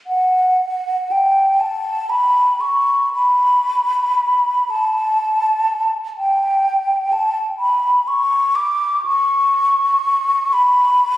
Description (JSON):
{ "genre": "classical, free, expressive piece for unaccompanied flute", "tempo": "35-43 BPM (dotted quarters)", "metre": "6/8", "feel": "rubato", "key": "unclear", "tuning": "A4 = 439 Hz", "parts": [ { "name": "mellow hollow concert flute", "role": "solo", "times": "0.1-11.2 s", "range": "F#5 to D6", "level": "-14 LUFS", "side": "equal", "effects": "none" } ], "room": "moderate church reverb, RT60 2.9 s", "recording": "recorded on a phone in the room, studio reverb, compression", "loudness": "-14 LUFS", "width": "side -15 dB against mid", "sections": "0.1-11.2 A section", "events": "none", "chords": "none" }